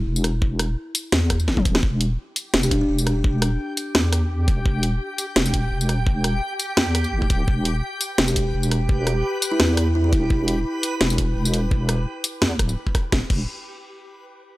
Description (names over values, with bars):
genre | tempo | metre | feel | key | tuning
half-time drum and bass | 170 BPM | 4/4 | swing 54% on 16ths, half-time | E minor | A4 = 440 Hz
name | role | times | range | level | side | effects
deep soft wobble bass | bass | 0.0-13.5 s | D1 to E2 | -22 LUFS | equal | chorus
drum and bass drum kit | drums | 0.2-13.4 s | crash cymbal, hi-hat, rim click, snare drum, tambourine, toms | -22 LUFS | equal | small room reverb
electronic kick drum | drums | 0.4-13.4 s | none | -22 LUFS | equal | small room reverb
backwards swelling texture | texture | 3.0-13.1 s | G4 to G5 | -30 LUFS | equal | built-in reverb
buzzing kalimba | melody | 2.6-2.9, 8.3-10.1 s | D4 to G4 | -28 LUFS | equal | analog delay
room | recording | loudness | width
little or no reverb | dry, gritty hardware recording, transformer saturation | -19 LUFS | side -18 dB against mid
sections
0.0-13.1 A section; 13.1-14.5 B section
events
drop 0.0-13.1; drum fill 1.5-1.8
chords
0.0 Em; 13.1 N.C.